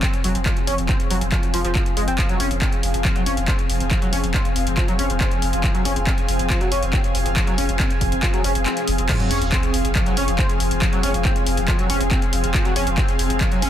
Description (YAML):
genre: driving peak-time techno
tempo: 139 BPM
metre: 4/4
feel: straight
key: F minor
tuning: A4 = 440 Hz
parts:
  - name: overdriven synth lead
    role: riff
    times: 0.0-13.7 s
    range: F3 to Db4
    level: -26 LUFS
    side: equal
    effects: distortion, ensemble chorus, cassette tape, sidechain pumping, ping-pong delay
  - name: saturated sub bass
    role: bass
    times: 0.0-13.7 s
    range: F1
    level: -24 LUFS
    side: equal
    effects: overdrive, sidechain pumping, low-pass filter
  - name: swarming drone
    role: drone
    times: 0.0-13.7 s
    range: F3 to C4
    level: -30 LUFS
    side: left 2 dB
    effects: built-in reverb, sidechain pumping
  - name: electronic kick drum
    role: drums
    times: 0.0-13.5 s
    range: none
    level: -21 LUFS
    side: equal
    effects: none
  - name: punchy analog drum machine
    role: drums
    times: 0.0-13.7 s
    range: crash cymbal, handclaps, hi-hat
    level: -26 LUFS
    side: left 1 dB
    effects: sidechain pumping on hats, sidechain pumping on cymbals
  - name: granular cloud pad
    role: texture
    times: 0.0-13.7 s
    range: C4 to Ab5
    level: -26 LUFS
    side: equal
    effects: built-in reverb, sidechain pumping
  - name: sub drop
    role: sound effects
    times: 9.1-10.8 s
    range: none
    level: -30 LUFS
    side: equal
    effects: none
room: digital ambience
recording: dense, heavily limited modern master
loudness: -18 LUFS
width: side -11 dB against mid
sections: 0.0-9.1 A section; 9.1-13.7 B section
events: kick drops out 8.7-9.1; drop 9.1-13.7; impact 9.1-10.8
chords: 0.0 Fm